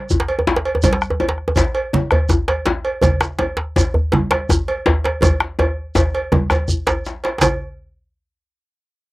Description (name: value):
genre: west african traditional, West African drum ensemble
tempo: 109 BPM (dotted quarters)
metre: 12/8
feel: straight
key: none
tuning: none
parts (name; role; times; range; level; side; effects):
- bombo; percussion; 0.1-7.6 s; none; -20 LUFS; left 1 dB; none
- djembe; percussion; 0.1-7.6 s; none; -21 LUFS; left 2 dB; none
- shekere; percussion; 0.1-7.6 s; none; -26 LUFS; right 1 dB; none
- djembe; percussion; 0.2-7.6 s; none; -20 LUFS; equal; none
- congas; percussion; 0.3-7.6 s; none; -20 LUFS; right 2 dB; none
- cowbell; percussion; 0.3-7.6 s; none; -22 LUFS; right 2 dB; none
room: moderate booth ambience, RT60 0.2 s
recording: home recording on cassette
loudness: -16 LUFS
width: side -19 dB against mid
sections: 0.0-7.4 A section; 7.4-9.1 B section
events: drum fill 5.2-7.4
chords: none